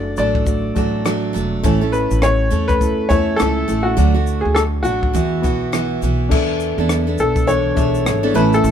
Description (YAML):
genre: acoustic pop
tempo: 103 BPM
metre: 4/4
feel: swing 60% on 16ths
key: unclear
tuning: A4 = 436 Hz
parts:
  - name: bright upright piano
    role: melody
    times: 0.0-8.7 s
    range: F#4 to D5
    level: -20 LUFS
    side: left 3 dB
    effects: none
  - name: barky reed electric piano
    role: accompaniment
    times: 0.0-8.7 s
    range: A3 to F#5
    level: -24 LUFS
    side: left 4 dB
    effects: overdrive
  - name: picked steel-string acoustic guitar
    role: accompaniment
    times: 0.0-8.7 s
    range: A2 to A4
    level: -21 LUFS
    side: right 5 dB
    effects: none
  - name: upright bass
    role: bass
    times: 0.0-8.7 s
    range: E1 to E2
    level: -21 LUFS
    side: equal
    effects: none
  - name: compact cocktail drum kit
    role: drums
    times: 0.2-8.7 s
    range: crash cymbal, kick drum, rim click, shaker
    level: -22 LUFS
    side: left 1 dB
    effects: none
room: little or no reverb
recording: minimal, uncompressed stereo recording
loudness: -15 LUFS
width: side -9 dB against mid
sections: 0.0-6.3 A section; 6.3-8.7 B section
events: none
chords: 0.0 D/F#; 1.6 A; 4.0 D; 5.1 Esus2; 6.3 E7sus4